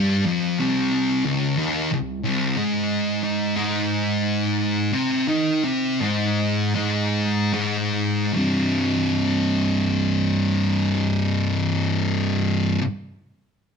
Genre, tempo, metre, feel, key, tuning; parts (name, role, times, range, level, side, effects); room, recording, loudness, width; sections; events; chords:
metal; 72-91 BPM; 4/4; straight; C minor; A4 = 440 Hz
thick fuzz guitar; solo; 0.0-12.8 s; C2 to Eb4; -20 LUFS; equal; distortion
moderate large studio reverb, RT60 0.9 s; band playing live in one room; -20 LUFS; side -6 dB against mid
0.0-8.4 A section; 8.4-11.7 B section
slowing down 2.6-8.4
0.0 Cm; 2.6 Ab5; 8.4 C5